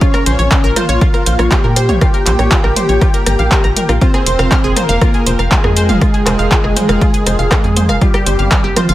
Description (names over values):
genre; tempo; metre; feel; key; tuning
melodic techno; 120 BPM; 4/4; straight; F minor; A4 = 440 Hz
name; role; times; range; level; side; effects
fat analog lead; melody; 0.0-8.9 s; F3 to G4; -18 LUFS; equal; analog chorus, cassette tape, sidechain pumping, tape echo
big bright polysynth; second line; 0.0-8.9 s; F4 to G5; -23 LUFS; left 1 dB; ensemble chorus, sidechain pumping, tape echo
dark analog pad; sustained chords; 0.0-8.9 s; Bb3 to G5; -25 LUFS; equal; chorus, sidechain pumping
analog pluck; arpeggios; 0.0-8.9 s; F4 to Bb6; -20 LUFS; equal; chorus, sidechain pumping, tape echo
deep house drum kit; drums; 0.0-8.9 s; handclaps, hi-hat, rim click, toms; -17 LUFS; equal; overdrive, sidechain pumping on hats, studio reverb, sidechain pumping on cymbals, sidechain pumping on toms
electronic kick drum; drums; 0.0-8.6 s; none; -13 LUFS; equal; overdrive, studio reverb
tight sequencer bass; bass; 0.3-8.9 s; F1 to Bb2; -15 LUFS; equal; sidechain pumping
room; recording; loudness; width
digital ambience; none; -10 LUFS; side -15 dB against mid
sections
0.0-8.9 A section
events
none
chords
0.0 Bbmadd9; 4.0 Fm; 8.0 Csus4/G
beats
| 0.01 0.51 1.01 1.51 | 2.01 2.51 3.01 3.51 | 4.01 4.51 5.01 5.51 | 6.01 6.51 7.01 7.51 | 8.01 8.51